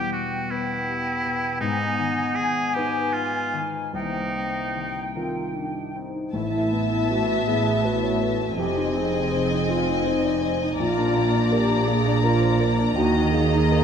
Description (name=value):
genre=cinematic, emotional film score for orchestra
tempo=49-55 BPM (dotted quarters)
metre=6/8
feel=rubato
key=unclear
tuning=A4 = 438 Hz
part: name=bright oboe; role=second line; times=0.0-5.1 s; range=Eb4 to Ab4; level=-27 LUFS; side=right 2 dB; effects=none
part: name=dark clarinet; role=second line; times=0.0-6.3 s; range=Bb3 to Eb4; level=-33 LUFS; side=left 1 dB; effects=none
part: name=small flute group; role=second line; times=0.0-6.0 s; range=G5 to Ab5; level=-30 LUFS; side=left 1 dB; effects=none
part: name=dark baby grand piano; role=accompaniment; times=0.0-13.8 s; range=A1 to D5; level=-28 LUFS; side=left 1 dB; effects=none
part: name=concert harp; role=arpeggios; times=0.0-13.8 s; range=E2 to E5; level=-32 LUFS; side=left 8 dB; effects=none
part: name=mellow alto flute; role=melody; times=5.2-13.8 s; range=Eb4 to Ab4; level=-27 LUFS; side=right 1 dB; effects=none
part: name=warm studio violin section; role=melody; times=6.3-13.8 s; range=Ab5 to Bb5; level=-30 LUFS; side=left 6 dB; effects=none
part: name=dark studio violin section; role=second line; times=6.3-13.8 s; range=D5 to E5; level=-29 LUFS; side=left 3 dB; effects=none
part: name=warm studio viola section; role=accompaniment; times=6.3-13.8 s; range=Bb3 to C4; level=-31 LUFS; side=left 1 dB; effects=none
part: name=rich studio double bass section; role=bass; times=6.3-13.8 s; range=F1 to Eb2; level=-28 LUFS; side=right 5 dB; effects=none
part: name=warm studio cello section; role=bass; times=6.3-13.8 s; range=F2 to Eb3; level=-27 LUFS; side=right 3 dB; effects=none
room=wet concert hall reverb, RT60 2.1 s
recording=none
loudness=-21 LUFS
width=side -7 dB against mid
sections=0.0-6.3 A section; 6.3-13.8 B section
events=none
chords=0.0 Em; 1.6 Abm; 3.9 Cm7; 6.3 Asus2; 8.6 Fm7; 10.8 Bb; 13.0 Eb5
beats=0.50 | 1.60 2.75 | 3.94 5.15 | 6.34 7.48 | 8.58 9.68 | 10.79 11.88 | 12.97